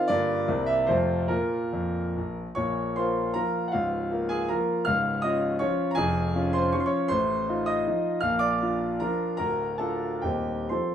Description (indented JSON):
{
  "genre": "classical, romantic triple-time dance for piano with dotted rhythms",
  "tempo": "120-172 BPM",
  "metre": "3/4",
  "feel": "rubato",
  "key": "Bb minor, Bb major from 7.1 s",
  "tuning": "A4 = 439 Hz",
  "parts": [
    { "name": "bright concert grand piano", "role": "solo", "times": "0.0-10.9 s", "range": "Db1 to F6", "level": "-24 LUFS", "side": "equal", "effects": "none" }
  ],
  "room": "moderate large studio reverb, RT60 0.9 s",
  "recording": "minimal, uncompressed stereo recording",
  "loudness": "-24 LUFS",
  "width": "side -9 dB against mid",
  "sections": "0.0-2.6 A section; 2.6-10.9 B section",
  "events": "none",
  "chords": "0.1 Gm7; 0.5 C7; 0.9 F; 1.3 Bb5; 2.6 Bbm; 3.7 Bbm/Db; 4.9 Db; 6.0 Db/F; 7.1 F7/A; 8.2 Bb; 9.4 Bb/D; 10.2 Cm/Eb"
}